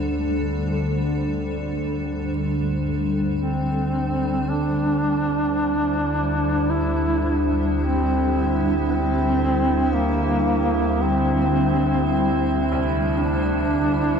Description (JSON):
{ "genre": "dark ambient drone", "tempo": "55 BPM", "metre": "4/4", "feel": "straight", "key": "unclear", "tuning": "A4 = 440 Hz", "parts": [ { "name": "granular cloud pad", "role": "sustained chords", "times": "0.0-14.2 s", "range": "G3 to C5", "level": "-26 LUFS", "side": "equal", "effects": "built-in reverb, shimmer reverb" }, { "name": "clear grand piano", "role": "arpeggios", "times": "0.0-4.5, 12.7-14.2 s", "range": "C2 to C3", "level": "-38 LUFS", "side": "equal", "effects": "none" }, { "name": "analog drone", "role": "drone", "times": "0.0-14.2 s", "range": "D2 to D3", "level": "-24 LUFS", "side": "equal", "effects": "chorus" }, { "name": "mellow duduk", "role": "melody", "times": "3.4-14.2 s", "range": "Bb3 to E4", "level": "-23 LUFS", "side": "equal", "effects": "shimmer reverb, ping-pong delay" }, { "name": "metallic inharmonic drone", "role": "texture", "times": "5.8-14.2 s", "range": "E4", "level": "-28 LUFS", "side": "right 4 dB", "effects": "chorus, built-in reverb, shimmer reverb" } ], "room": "wet cathedral reverb, RT60 5.5 s", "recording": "in a vast, echoing space", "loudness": "-19 LUFS", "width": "side -6 dB against mid", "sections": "0.0-4.5 A section; 4.5-14.2 B section", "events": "fade-in on grand piano 4.5-14.2", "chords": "0.0 Am7" }